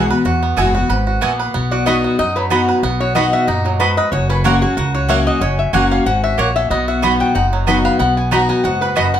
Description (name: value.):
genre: bluegrass.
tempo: 186 BPM.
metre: 4/4.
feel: swing 54% on 8ths.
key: B major.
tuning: A4 = 440 Hz.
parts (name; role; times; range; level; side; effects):
picked steel-string acoustic guitar; accompaniment; 0.0-9.2 s; E2 to F#4; -18 LUFS; left 3 dB; none.
bluegrass banjo; arpeggios; 0.0-9.2 s; F#3 to B4; -21 LUFS; right 4 dB; none.
mandolin; stabs; 0.0-9.1 s; A#3 to B5; -19 LUFS; right 5 dB; none.
upright bass; bass; 0.0-9.2 s; F#1 to F#2; -20 LUFS; equal; none.
lap resonator guitar; second line; 1.7-9.2 s; F#4 to A#5; -20 LUFS; left 4 dB; none.
room: moderate studio reverb, RT60 0.6 s.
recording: none.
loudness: -13 LUFS.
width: side -10 dB against mid.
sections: 0.0-9.2 A section.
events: resonator guitar played with a steel bar solo 0.0-9.2.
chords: 0.0 Eadd9; 1.5 B; 4.1 F#; 6.7 B.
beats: | 0.25 0.57 0.90 1.22 | 1.54 1.87 2.19 2.51 | 2.83 3.16 3.48 3.80 | 4.13 4.45 4.77 5.09 | 5.42 5.74 6.06 6.38 | 6.71 7.03 7.35 7.67 | 8.00 8.32 8.64 8.96.